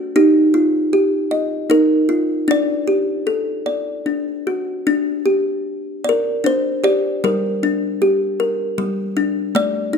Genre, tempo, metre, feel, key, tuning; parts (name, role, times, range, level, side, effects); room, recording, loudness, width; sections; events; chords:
children's music, lullaby; 77 BPM; 3/4; straight; G minor from 4.9 s; A4 = 440 Hz
kalimba; solo; 0.0-10.0 s; G3 to Eb5; -16 LUFS; left 1 dB
moderate recital hall reverb, RT60 1.4 s; dark, warm production; -16 LUFS; side -6 dB against mid
0.0-4.9 A section; 4.9-10.0 B section
0.2 Ebadd9; 2.5 G5/D; 3.3 D; 4.9 Dsus4; 7.2 Gm